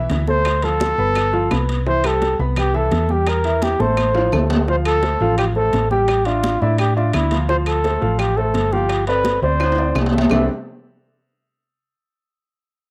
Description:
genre	Afro-Cuban jazz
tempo	170 BPM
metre	4/4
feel	straight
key	C major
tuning	A4 = 440 Hz
part	warm upright piano	accompaniment	0.0-10.5 s	C3 to B5	-26 LUFS	equal	cassette tape, plate reverb
part	hollow-body short-scale fingered electric bass	bass	0.0-10.5 s	G1 to A2	-23 LUFS	equal	none
part	bongos	percussion	0.1-10.4 s	none	-33 LUFS	equal	none
part	congas	percussion	0.1-10.4 s	none	-31 LUFS	equal	none
part	timbales	percussion	0.1-10.4 s	none	-27 LUFS	equal	none
part	breathy trumpet	melody	0.3-10.5 s	E4 to E5	-22 LUFS	equal	plate reverb
part	claves	percussion	0.5-10.4 s	none	-33 LUFS	equal	none
room	moderate studio reverb, RT60 0.6 s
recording	home recording on cassette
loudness	-18 LUFS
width	mono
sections	0.0-4.7 A section; 4.7-10.3 B section; 10.3-11.7 C section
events	drum fill 3.8-4.7, 9.6-10.3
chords	0.5 Dm; 1.2 G9; 1.9 C6; 3.3 Edim; 4.0 F6/A; 4.7 Dm7; 6.1 A7sus4; 7.5 Dm7; 8.9 G9sus4; 10.3 Csus2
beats	0.10 | 0.46 0.81 1.16 1.51 | 1.86 2.21 2.57 2.92 | 3.27 3.62 3.97 4.33 | 4.68 5.03 5.38 5.73 | 6.08 6.44 6.79 7.14 | 7.49 7.84 8.20 8.55 | 8.90 9.25 9.60 9.96 | 10.31

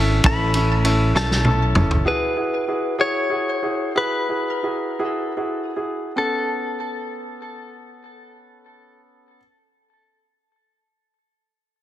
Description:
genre	six-eight pop ballad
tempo	48-66 BPM (dotted quarters)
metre	6/8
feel	straight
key	A major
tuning	A4 = 440 Hz
part	clear concert grand piano	accompaniment	0.0-9.4 s	B3 to A4	-24 LUFS	equal	none
part	fretless electric bass	bass	0.0-2.0 s	F#1 to B1	-20 LUFS	equal	ensemble chorus
part	loose indie drum kit	drums	0.2-2.1 s	kick drum, ride cymbal, snare drum, toms	-21 LUFS	equal	none
part	direct-recorded clean electric guitar	melody	0.3-9.4 s	A4 to B5	-24 LUFS	left 2 dB	tape echo
room	light reverb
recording	dense, heavily limited modern master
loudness	-19 LUFS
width	side -13 dB against mid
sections	0.0-2.1 A section; 2.1-6.2 B section; 6.2-11.1 C section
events	drum fill 1.2-2.1; slowing down 2.1-6.2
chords	0.0 A; 2.1 Eadd9; 6.2 Aadd9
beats	| 0.24 1.15 | 2.06 2.98 | 3.95 5.00 | 6.16 7.40 | 8.64

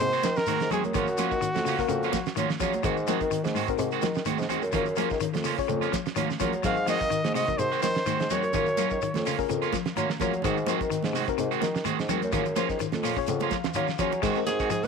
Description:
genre	afrobeat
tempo	126 BPM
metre	4/4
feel	swing 54% on 16ths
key	Ab mixolydian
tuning	A4 = 442 Hz
part	clear trumpet	melody	0.0-2.3, 6.7-9.3 s	Gb4 to F5	-28 LUFS	equal	none
part	reed electric piano	accompaniment	0.0-14.7 s	Bb3 to Bb5	-33 LUFS	left 15 dB	none
part	electric guitar at the edge of break-up	arpeggios	0.0-14.8 s	Ab2 to Ab3	-33 LUFS	left 12 dB	none
part	electric guitar at the edge of break-up	stabs	0.0-14.9 s	Eb3 to Gb4	-32 LUFS	right 12 dB	none
part	dark bassoon	bass	0.0-14.9 s	F2 to Gb3	-30 LUFS	right 1 dB	none
part	damped 70s drum kit	drums	0.0-14.9 s	crash cymbal, hi-hat, kick drum, snare drum	-34 LUFS	right 5 dB	none
part	shekere	percussion	0.1-14.9 s	none	-39 LUFS	left 7 dB	none
part	congas	percussion	0.2-14.9 s	none	-35 LUFS	right 12 dB	none
part	bright alto saxophone	melody	14.5-14.9 s	Ab4 to Cb5	-28 LUFS	right 3 dB	none
room	moderate spring reverb, RT60 1.8 s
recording	1960s-style stereo with parts hard left and right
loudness	-24 LUFS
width	side -5 dB against mid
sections	0.0-14.2 A section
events	reed electric piano fill 9.7-10.4, 12.8-14.2; drum fill 13.3-14.2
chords	0.0 Ab7; 0.9 Gbmaj7; 2.8 Ab7; 4.7 Gbmaj7; 6.6 Ab7; 8.5 Gbmaj7; 10.4 Ab7; 12.3 Gbmaj7; 14.2 Ab7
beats	0.00 0.47 | 0.94 1.42 1.89 2.37 | 2.84 3.31 3.79 4.26 | 4.74 5.21 5.69 6.16 | 6.64 7.11 7.59 8.06 | 8.54 9.01 9.49 9.96 | 10.44 10.91 11.39 11.86 | 12.33 12.81 13.28 13.75 | 14.23 14.70

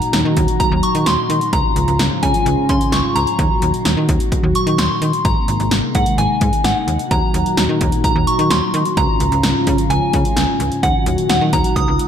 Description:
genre	synth-pop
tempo	129 BPM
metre	4/4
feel	straight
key	Eb dorian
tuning	A4 = 439 Hz
part	soft synth bell	melody	0.0-12.1 s	Gb5 to Eb6	-19 LUFS	equal	chorus, analog delay, shimmer reverb
part	warm analog pad	sustained chords	0.0-12.1 s	Ab2 to Gb4	-20 LUFS	left 1 dB	chorus, shimmer reverb
part	punchy analog drum machine	drums	0.0-12.1 s	hi-hat, kick drum, snare drum	-19 LUFS	equal	overdrive
part	slap-like FM bass	bass	0.1-12.0 s	Ab1 to Eb3	-19 LUFS	equal	none
room	wet plate reverb, RT60 1.9 s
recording	dreamy mix soaked in reverb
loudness	-14 LUFS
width	side -8 dB against mid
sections	0.0-12.1 A section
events	none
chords	0.0 Ebm; 1.5 Db; 3.4 Ebm; 5.2 Abadd9; 6.9 Ebm; 9.0 Db; 10.8 Ebm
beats	0.13 0.60 1.06 | 1.53 1.99 2.46 2.92 | 3.39 3.85 4.32 4.79 | 5.25 5.71 6.18 6.65 | 7.11 7.58 8.04 8.51 | 8.97 9.44 9.90 10.37 | 10.83 11.30 11.76

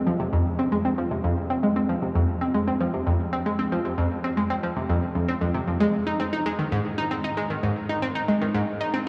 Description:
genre	ambient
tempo	115 BPM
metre	4/4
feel	straight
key	F minor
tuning	A4 = 438 Hz
part	analog pluck	solo	0.1-9.0 s	F2 to Eb4	-25 LUFS	equal	chorus, analog delay
room	wet cathedral reverb, RT60 6.5 s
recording	in a vast, echoing space, small room ambience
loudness	-25 LUFS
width	mono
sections	0.0-9.1 A section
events	none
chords	none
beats	0.20 0.72 1.24 | 1.76 2.28 2.81 3.33 | 3.85 4.37 4.89 5.42 | 5.94 6.46 6.98 7.50 | 8.02 8.54

